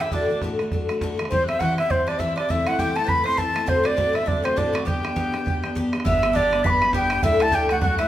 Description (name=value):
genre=celtic folk, Celtic reel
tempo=202 BPM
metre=4/4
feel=swing 58% on 8ths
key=G major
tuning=A4 = 440 Hz
part: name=wooden flute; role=melody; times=0.0-8.1 s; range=C5 to D6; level=-22 LUFS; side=right 1 dB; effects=none
part: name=Irish bouzouki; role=second line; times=0.0-8.1 s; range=C4 to C5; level=-33 LUFS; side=right 3 dB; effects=none
part: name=mellow hollow tin whistle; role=second line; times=0.0-8.1 s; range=C6 to C7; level=-30 LUFS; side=left 4 dB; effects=none
part: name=picked steel-string acoustic guitar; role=accompaniment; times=0.0-8.1 s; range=D2 to G4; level=-26 LUFS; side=left 2 dB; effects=none
part: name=bodhran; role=percussion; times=0.1-8.0 s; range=none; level=-27 LUFS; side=right 2 dB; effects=none
part: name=upright bass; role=bass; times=6.0-8.1 s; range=G1 to D2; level=-30 LUFS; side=equal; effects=none
room=wet large studio reverb, RT60 1.3 s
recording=band playing live in one room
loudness=-19 LUFS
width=side -12 dB against mid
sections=0.0-6.0 A section; 6.0-8.1 B section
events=none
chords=0.1 D; 1.3 C; 2.5 Am/C; 3.7 D7; 4.9 G; 7.2 Dsus2